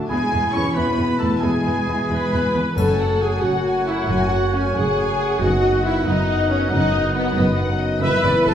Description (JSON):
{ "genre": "cinematic, heroic adventure film score", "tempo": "91 BPM (dotted quarters)", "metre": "6/8", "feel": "straight", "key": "F# minor", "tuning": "A4 = 441 Hz", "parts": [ { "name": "dark French horn section", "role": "sustained chords", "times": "0.0-8.5 s", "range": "A3 to E4", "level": "-28 LUFS", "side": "left 3 dB", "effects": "none" }, { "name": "warm trombone section", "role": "sustained chords", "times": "0.0-8.5 s", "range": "F#2 to F#3", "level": "-29 LUFS", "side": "right 1 dB", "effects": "none" }, { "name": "warm symphonic violin section", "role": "melody", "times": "0.1-8.5 s", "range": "D5 to C#6", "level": "-30 LUFS", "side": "left 2 dB", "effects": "none" }, { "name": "mellow large flute ensemble", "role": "second line", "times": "0.1-8.5 s", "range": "B4 to B5", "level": "-30 LUFS", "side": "left 4 dB", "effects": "none" }, { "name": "warm clarinet", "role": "second line", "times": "0.1-8.5 s", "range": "E4 to C#5", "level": "-30 LUFS", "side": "left 1 dB", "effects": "none" }, { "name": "warm oboe", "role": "second line", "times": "0.1-8.5 s", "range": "G#4 to F#5", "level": "-31 LUFS", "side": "left 1 dB", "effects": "none" }, { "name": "warm symphonic violin section", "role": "second line", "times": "0.1-8.5 s", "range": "B4 to C#6", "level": "-32 LUFS", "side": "left 2 dB", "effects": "none" }, { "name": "rich symphonic viola section", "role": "accompaniment", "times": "0.1-8.5 s", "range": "E3 to B4", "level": "-23 LUFS", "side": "equal", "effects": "none" }, { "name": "warm trumpet section", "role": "stabs", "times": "0.1-8.5 s", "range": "B3 to C#5", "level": "-28 LUFS", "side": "right 1 dB", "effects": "none" }, { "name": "rich chamber double bass section", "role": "bass", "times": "0.1-8.5 s", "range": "F#1 to E2", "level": "-24 LUFS", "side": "right 1 dB", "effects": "none" }, { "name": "warm symphonic cello section", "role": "bass", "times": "0.1-8.5 s", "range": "F#2 to C#4", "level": "-26 LUFS", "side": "right 1 dB", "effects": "none" }, { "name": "timpani", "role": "percussion", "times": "2.8-3.4 s", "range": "F#2", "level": "-26 LUFS", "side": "equal", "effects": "none" }, { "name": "triangle", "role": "percussion", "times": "2.8-3.6 s", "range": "none", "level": "-44 LUFS", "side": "left 3 dB", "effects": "none" } ], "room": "wet recital hall reverb, RT60 1.3 s", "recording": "recorded in a church or concert hall", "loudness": "-17 LUFS", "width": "side -9 dB against mid", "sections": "0.0-2.8 A section; 2.8-8.5 B section", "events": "none", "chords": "0.1 E; 2.8 F#madd9; 5.4 B/F#; 8.0 E" }